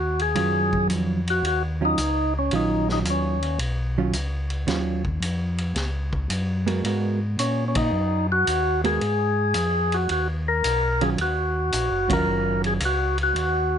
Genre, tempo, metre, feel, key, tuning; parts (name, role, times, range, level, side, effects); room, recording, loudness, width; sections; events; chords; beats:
soul jazz organ trio; 111 BPM; 4/4; swing 68% on 8ths; Eb minor; A4 = 440 Hz
percussive tonewheel organ; melody; 0.0-3.6, 7.4-13.8 s; Db4 to Bb4; -23 LUFS; left 1 dB; slow rotary speaker
mellow tonewheel organ; bass; 0.0-13.8 s; Gb1 to Bb2; -25 LUFS; left 1 dB; slow rotary speaker
vintage drum kit; drums; 0.2-13.5 s; hi-hat, kick drum, ride cymbal, snare drum; -31 LUFS; left 1 dB
hollow-body jazz guitar; accompaniment; 0.4-12.8 s; Eb3 to Bb4; -25 LUFS; right 5 dB
light reverb; nothing above 10.7 kHz; -21 LUFS; side -8 dB against mid
0.0-13.8 A section
band accent 7.7, 12.0
0.0 Ebm9; 6.8 Abm9; 11.2 Ebm9
| 0.36 0.91 1.45 1.99 | 2.53 3.07 3.61 4.15 | 4.69 5.23 5.77 6.31 | 6.85 7.39 7.93 8.47 | 9.01 9.56 10.10 10.64 | 11.18 11.73 12.27 12.81 | 13.36